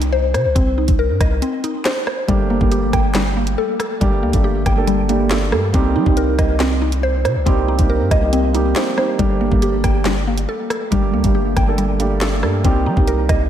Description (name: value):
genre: hip hop, drill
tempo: 139 BPM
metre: 4/4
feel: half-time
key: G minor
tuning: A4 = 440 Hz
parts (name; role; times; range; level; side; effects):
- mallet-like synth pluck; arpeggios; 0.0-13.5 s; G3 to G5; -20 LUFS; left 1 dB; chorus, phaser, diffuse ambient delay
- long sustained 808-style bass; bass; 0.0-13.5 s; G1 to G3; -20 LUFS; equal; none
- drill drum kit; drums; 0.0-13.4 s; handclaps, hi-hat, kick drum, rim click, snare drum; -20 LUFS; equal; none
- felt-muted upright piano; accompaniment; 2.3-13.5 s; G3 to A4; -22 LUFS; right 4 dB; none
room: moderate lush hall reverb, RT60 1.8 s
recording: dreamy mix soaked in reverb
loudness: -15 LUFS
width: side -10 dB against mid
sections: 0.0-13.5 A section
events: break 1.4-2.3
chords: 0.0 Cm7; 2.3 Gmadd9; 5.7 Cm7; 9.2 Gmadd9; 12.6 Cm7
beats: 0.13 | 0.56 0.99 1.42 1.85 | 2.29 2.72 3.15 3.58 | 4.01 4.44 4.88 5.31 | 5.74 6.17 6.60 7.03 | 7.46 7.90 8.33 8.76 | 9.19 9.62 10.05 10.49 | 10.92 11.35 11.78 12.21 | 12.64 13.08